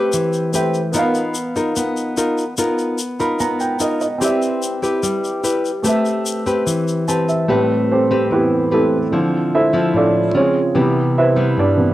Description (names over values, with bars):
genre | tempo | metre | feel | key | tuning
bossa nova | 147 BPM | 4/4 | straight | A minor | A4 = 439 Hz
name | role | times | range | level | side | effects
nylon-string guitar | accompaniment | 0.0-11.9 s | G2 to B4 | -18 LUFS | left 1 dB | cassette tape
warm baby grand piano | accompaniment | 0.0-11.9 s | A2 to B5 | -18 LUFS | right 2 dB | cassette tape
tube shaker | percussion | 0.1-7.5 s | none | -27 LUFS | left 4 dB | none
room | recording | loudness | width
moderate small room reverb, RT60 0.6 s | home recording on cassette | -15 LUFS | side -15 dB against mid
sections
0.0-7.5 A section; 7.5-11.9 B section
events
grand piano fill 3.0-4.2, 6.9-7.5; grand piano solo 7.5-11.9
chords
0.0 Am9; 0.9 Bmaj7#11; 4.2 Cmaj7; 5.8 Am9; 9.1 Dm9; 10.3 C#maj7; 10.7 Cmaj7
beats
0.13 0.54 | 0.94 1.35 1.76 2.17 | 2.58 2.99 3.40 3.80 | 4.21 4.62 5.03 5.44 | 5.85 6.25 6.66 7.07 | 7.48 7.89 8.30 8.71 | 9.11 9.52 9.93 10.34 | 10.75 11.15 11.56